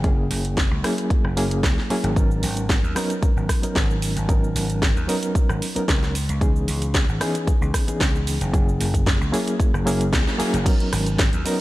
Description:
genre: nu-disco, nu disco.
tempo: 113 BPM.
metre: 4/4.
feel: straight.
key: G# minor.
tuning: A4 = 441 Hz.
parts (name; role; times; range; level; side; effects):
reed electric piano; accompaniment; 0.0-11.6 s; E3 to A#4; -25 LUFS; equal; fast tremolo, vintage 12-bit sampler grit, sidechain pumping, analog delay.
vintage slap bass; bass; 0.0-11.4 s; F#1 to D#2; -24 LUFS; equal; none.
electronic kick drum; drums; 0.0-11.3 s; none; -21 LUFS; equal; studio reverb.
house drum kit; drums; 0.0-11.6 s; cabasa, crash cymbal, hi-hat, rim click, snare drum; -26 LUFS; right 1 dB; studio reverb.
room: little or no reverb.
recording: none.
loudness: -19 LUFS.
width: side -17 dB against mid.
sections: 0.0-10.7 A section.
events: band accent 10.1.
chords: 0.0 F#9; 2.2 G#m11; 6.1 C#m9; 8.5 F#9; 10.7 G#m11.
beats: | 0.04 0.57 1.10 1.64 | 2.17 2.70 3.23 3.76 | 4.29 4.82 5.35 5.88 | 6.41 6.95 7.48 8.01 | 8.54 9.07 9.60 10.13 | 10.66 11.19.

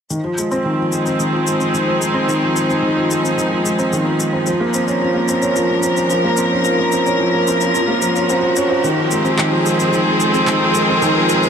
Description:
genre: piano and strings electronica.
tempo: 110 BPM.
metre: 4/4.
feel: straight.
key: F minor.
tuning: A4 = 441 Hz.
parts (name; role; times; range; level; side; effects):
clear chamber string section; sustained chords; 0.1-11.5 s; F3 to Bb4; -18 LUFS; equal; none.
felt-muted upright piano; riff; 0.1-11.5 s; Eb3 to C5; -17 LUFS; equal; tape echo.
electronic shaker and handclaps; drums; 0.1-11.5 s; none; -25 LUFS; left 3 dB; overdrive, high-pass filter on perc, studio reverb, high-pass filter on snare.
riser; sound effects; 4.1-11.5 s; none; -25 LUFS; right 2 dB; none.
room: light reverb.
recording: none.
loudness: -14 LUFS.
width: side -7 dB against mid.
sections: 0.1-11.5 A section.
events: build-up 0.1-11.5; riser 4.1-11.5.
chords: 0.1 Fm7; 4.5 Bbmadd9/F; 8.8 Fm7.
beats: | 0.11 0.66 1.20 1.75 | 2.29 2.84 3.38 3.93 | 4.47 5.02 5.56 6.11 | 6.66 7.20 7.75 8.29 | 8.84 9.38 9.93 10.47 | 11.02.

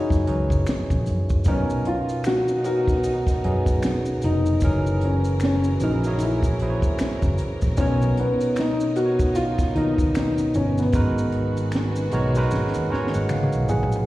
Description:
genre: R&B, neo-soul.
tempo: 76 BPM.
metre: 4/4.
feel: swing 61% on 16ths.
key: unclear.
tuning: A4 = 440 Hz.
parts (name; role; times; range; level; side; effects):
dark grand piano; melody; 0.0-14.1 s; B3 to G#4; -25 LUFS; left 1 dB; none.
barky tine electric piano; accompaniment; 0.0-14.1 s; B2 to C#6; -26 LUFS; right 2 dB; slapback echo.
fingered electric bass; bass; 0.1-14.0 s; E#1 to F#2; -23 LUFS; equal; none.
compact cocktail drum kit; drums; 0.1-14.1 s; hi-hat, kick drum, snare drum, toms; -24 LUFS; equal; none.
maracas and finger snaps; percussion; 0.1-14.1 s; none; -42 LUFS; left 2 dB; slapback echo.
warm studio string section; sustained chords; 1.4-14.1 s; C#3 to A#4; -35 LUFS; equal; none.
room: light reverb.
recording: live gig heard through the venue's PA, recital hall reverb, vinyl crackle.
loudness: -20 LUFS.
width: side -16 dB against mid.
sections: 0.0-14.1 A section.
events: tine electric piano fill 11.7-14.1; drum fill 12.5-14.1.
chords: 0.0 F#13; 1.5 Bmaj9; 4.6 F#7; 7.8 Bmaj9; 10.9 G#m7.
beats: 0.67 | 1.46 2.25 3.04 3.83 | 4.62 5.40 6.19 6.98 | 7.77 8.56 9.35 10.14 | 10.93 11.72 12.51 13.30.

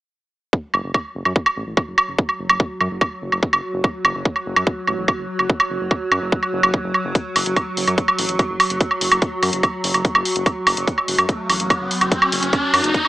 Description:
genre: psychedelic trance.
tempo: 145 BPM.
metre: 4/4.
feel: straight.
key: F# minor.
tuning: A4 = 440 Hz.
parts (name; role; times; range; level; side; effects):
evolving wavetable pad; sustained chords; 1.9-13.1 s; F#3; -25 LUFS; equal; chorus, built-in reverb, sidechain pumping.
electronic kick drum; drums; 0.5-13.0 s; none; -19 LUFS; equal; none.
round analog bass; bass; 0.7-12.9 s; F#1 to F#2; -28 LUFS; equal; none.
electronic woodblock and hi-hat; drums; 0.7-13.1 s; none; -18 LUFS; right 1 dB; none.
riser; sound effects; 11.1-13.1 s; none; -22 LUFS; equal; none.
room: light reverb.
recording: small speaker sound.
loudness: -17 LUFS.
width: side -17 dB against mid.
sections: 0.5-13.1 A section.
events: riser 11.1-13.1.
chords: none.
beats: | 0.53 0.94 1.36 1.77 | 2.19 2.60 3.01 3.43 | 3.84 4.25 4.67 5.08 | 5.50 5.91 6.32 6.74 | 7.15 7.56 7.98 8.39 | 8.81 9.22 9.63 10.05 | 10.46 10.88 11.29 11.70 | 12.12 12.53 12.94.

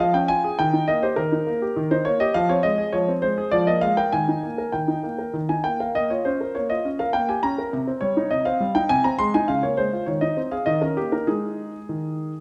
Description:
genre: classical-period piano sonatina.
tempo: 102 BPM.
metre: 3/4.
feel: straight.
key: unclear.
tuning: A4 = 440 Hz.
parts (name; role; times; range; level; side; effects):
warm concert grand piano; solo; 0.0-12.4 s; C3 to C6; -23 LUFS; equal; none.
room: wet recital hall reverb, RT60 1.7 s.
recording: dark, warm production.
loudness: -23 LUFS.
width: mono.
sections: 0.0-12.4 A section.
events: none.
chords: 0.0 Db/F; 0.6 Eb; 2.4 Fm; 3.5 Bb5/F; 4.1 Eb; 6.0 Bbm; 7.1 Gdim/Bb; 7.7 Cm; 8.9 Ab/C; 9.5 Bbm7/Db; 10.1 Ab/Eb; 10.7 Eb5; 11.3 Ab5.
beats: 0.00 | 0.60 1.18 1.77 | 2.35 2.94 3.53 | 4.13 4.74 5.34 | 5.96 6.55 7.14 | 7.73 8.31 8.90 | 9.49 10.08 10.67 | 11.28 11.89.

